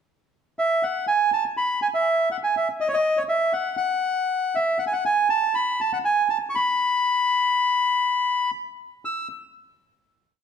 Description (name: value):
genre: tango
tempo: 120 BPM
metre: 4/4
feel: rubato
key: unclear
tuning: A4 = 440 Hz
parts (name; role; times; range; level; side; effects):
- bandoneon; solo; 0.6-9.3 s; C#5 to E6; -20 LUFS; equal; none
room: wet large studio reverb, RT60 1.4 s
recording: band playing live in one room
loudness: -20 LUFS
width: side -8 dB against mid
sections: 0.0-1.1 pickup bar; 1.1-9.0 A section; 9.0-10.4 final note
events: none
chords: none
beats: 0.07 0.57 | 1.07 1.57 2.07 2.56 | 3.06 3.56 4.06 4.55 | 5.05 5.55 6.05 6.54 | 7.04 7.54 8.04 8.54 | 9.04